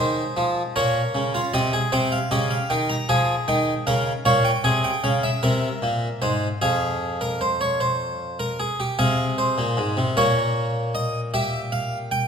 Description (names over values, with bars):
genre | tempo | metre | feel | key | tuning
classical, baroque-style 3-part fugue for harpsichord | 51 BPM (dotted quarters) | 6/8 | straight | F minor from 4.3 s | A4 = 441 Hz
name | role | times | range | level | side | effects
harpsichord | solo | 0.0-12.3 s | F2 to Bb5 | -20 LUFS | equal | none
room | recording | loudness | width
wet recital hall reverb, RT60 1.7 s | minimal, uncompressed stereo recording | -20 LUFS | side -7 dB against mid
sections
0.0-9.0 A section; 9.0-12.3 B section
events
none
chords
0.0 Db (rootless); 0.8 Gdim/Bb; 1.9 Cm; 3.1 Fm; 4.3 Bbm; 5.4 C7; 6.6 Fm; 9.0 Fm/C; 10.2 Bbm; 11.3 Edim/Bb